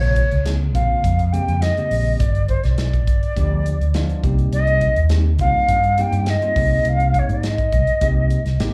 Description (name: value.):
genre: electric jazz fusion.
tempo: 103 BPM.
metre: 4/4.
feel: straight.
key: unclear.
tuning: A4 = 442 Hz.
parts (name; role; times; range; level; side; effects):
mellow jazz flute; melody; 0.0-8.7 s; C5 to G5; -24 LUFS; equal; slapback echo.
bell-like tine electric piano; accompaniment; 0.0-8.7 s; C3 to Ab4; -30 LUFS; equal; slapback echo.
fretless electric bass; bass; 0.0-8.7 s; G1 to Ab2; -21 LUFS; equal; none.
modern studio drum kit; drums; 0.0-8.7 s; hi-hat, kick drum, snare drum; -26 LUFS; equal; none.
room: little or no reverb.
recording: live gig heard through the venue's PA, club reverb.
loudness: -18 LUFS.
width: mono.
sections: 0.0-8.7 A section.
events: none.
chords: 0.0 Bbm9; 2.2 G7b9; 4.2 Cm7; 6.6 Abmaj9.